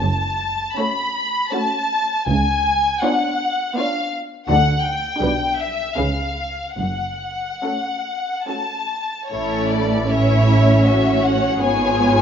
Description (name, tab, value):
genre	classical, slow romantic movement for string orchestra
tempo	69-84 BPM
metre	3/4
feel	rubato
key	F# minor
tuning	A4 = 439 Hz
part	warm symphonic violin section	melody	0.0-12.2 s	C#5 to B5	-21 LUFS	left 3 dB	none
part	rich symphonic double bass section	bass	0.0-12.2 s	F#1 to D2	-24 LUFS	right 2 dB	none
part	warm symphonic cello section	bass	0.0-12.2 s	F#2 to D3	-22 LUFS	right 2 dB	none
part	warm symphonic violin section	second line	0.8-12.2 s	E4 to E5	-24 LUFS	left 2 dB	none
part	warm symphonic viola section	accompaniment	0.8-12.2 s	G3 to E#4	-23 LUFS	right 3 dB	none
room	wet recital hall reverb, RT60 1.6 s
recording	nothing above 7.5 kHz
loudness	-17 LUFS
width	side -8 dB against mid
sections	0.0-9.3 A section; 9.3-12.2 B section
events	none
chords	0.0 F#m; 2.3 C#7b9; 4.5 D; 5.2 G/B; 6.0 C#7; 6.8 F#m; 9.3 A; 11.6 C#7/G#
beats	0.78 1.54 | 2.29 3.04 3.77 | 4.49 5.22 5.97 | 6.78 7.65 8.50 | 9.32 10.11 10.87 | 11.63